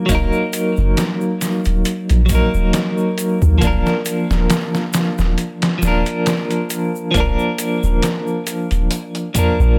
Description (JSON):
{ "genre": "trip hop", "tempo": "68 BPM", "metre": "4/4", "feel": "swing 55% on 16ths", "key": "unclear", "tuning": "A4 = 440 Hz", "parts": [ { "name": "clean electric guitar", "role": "accompaniment", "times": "0.0-9.8 s", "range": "F3 to Bb4", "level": "-21 LUFS", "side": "equal", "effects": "tremolo, tape echo" }, { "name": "soft 808-style bass", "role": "bass", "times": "0.1-9.8 s", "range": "Eb1 to Eb2", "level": "-18 LUFS", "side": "equal", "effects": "none" }, { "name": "trip hop sampler-style drum kit", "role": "drums", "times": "0.1-9.6 s", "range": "hi-hat, kick drum, snare drum", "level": "-23 LUFS", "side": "equal", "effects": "overdrive, small room reverb" }, { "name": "egg shaker", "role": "percussion", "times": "0.1-9.8 s", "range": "none", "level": "-34 LUFS", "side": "equal", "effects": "none" } ], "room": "light reverb, digital ambience", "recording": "none", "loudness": "-18 LUFS", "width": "mono", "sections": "0.0-9.8 A section", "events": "none", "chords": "0.0 Ebm; 3.6 Bb/Eb", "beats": "| 0.09 0.97 1.86 2.74 | 3.62 4.50 5.39 6.27 | 7.15 8.03 8.92" }